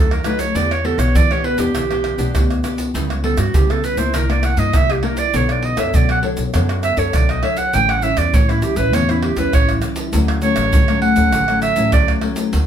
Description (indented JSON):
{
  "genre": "samba and choro",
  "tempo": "100 BPM",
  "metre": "4/4",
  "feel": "straight",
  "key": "D major",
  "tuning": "A4 = 440 Hz",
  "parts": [
    { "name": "clear clarinet", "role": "second line", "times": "0.0-12.1 s", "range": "E4 to G5", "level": "-19 LUFS", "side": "right 4 dB", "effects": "none" },
    { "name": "nylon-string guitar", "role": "accompaniment", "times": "0.0-12.7 s", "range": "F#2 to C#5", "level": "-21 LUFS", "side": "left 3 dB", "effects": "none" },
    { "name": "upright bass", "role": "bass", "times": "0.0-12.7 s", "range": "A1 to E3", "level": "-20 LUFS", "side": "equal", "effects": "none" },
    { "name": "egg shaker, pandeiro, tamborim and surdo", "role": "percussion", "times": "0.1-12.7 s", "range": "none", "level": "-19 LUFS", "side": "right 1 dB", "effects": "none" }
  ],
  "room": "moderate studio ambience, RT60 0.5 s",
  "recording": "band playing live in one room",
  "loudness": "-14 LUFS",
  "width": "side -9 dB against mid",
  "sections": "0.0-12.7 A section",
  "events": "clarinet solo 0.0-12.7",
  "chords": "0.0 B7; 0.6 Em7; 2.9 C#m7b5; 4.1 C9; 5.3 Bm9; 7.7 A7; 10.1 Dmaj7"
}